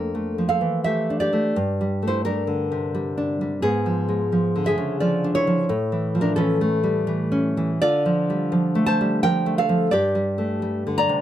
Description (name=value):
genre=romantic piece for solo classical guitar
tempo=86 BPM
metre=3/4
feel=rubato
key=D minor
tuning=A4 = 439 Hz
part: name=nylon-string guitar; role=solo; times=0.0-11.2 s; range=F2 to Bb5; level=-20 LUFS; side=equal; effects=none
room=light reverb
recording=close, detailed microphones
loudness=-20 LUFS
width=side -11 dB against mid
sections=0.0-11.2 A section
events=none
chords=0.0 Dm/F; 1.6 Gm; 3.6 G#dim7; 5.7 A; 7.8 Dm; 9.9 Gm